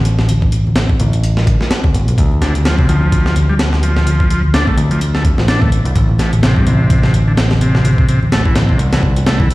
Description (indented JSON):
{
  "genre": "breakbeat, breaks",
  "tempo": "127 BPM",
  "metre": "4/4",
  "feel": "swing 57% on 16ths",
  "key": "D minor",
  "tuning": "A4 = 440 Hz",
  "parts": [
    { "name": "picked electric bass", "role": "bass", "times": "0.0-9.5 s", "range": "G1 to D2", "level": "-14 LUFS", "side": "equal", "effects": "tube saturation" },
    { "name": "breakbeat sampler-style drum kit", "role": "drums", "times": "0.1-9.5 s", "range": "hi-hat, kick drum, snare drum", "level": "-15 LUFS", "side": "equal", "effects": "none" },
    { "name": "congas and bongos", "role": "percussion", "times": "0.2-9.5 s", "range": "none", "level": "-22 LUFS", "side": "left 1 dB", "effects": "none" },
    { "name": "combo organ", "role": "riff", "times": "2.4-9.5 s", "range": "G2 to D4", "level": "-17 LUFS", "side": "equal", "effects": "tube saturation, vintage 12-bit sampler grit, ping-pong delay" }
  ],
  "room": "light reverb, digital ambience",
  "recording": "played on a big sound system in a bare room, large studio reverb, vinyl crackle",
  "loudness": "-11 LUFS",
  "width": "side -19 dB against mid",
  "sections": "0.0-9.5 A section",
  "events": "none",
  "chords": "0.0 N.C.; 2.2 Dm; 6.0 Am"
}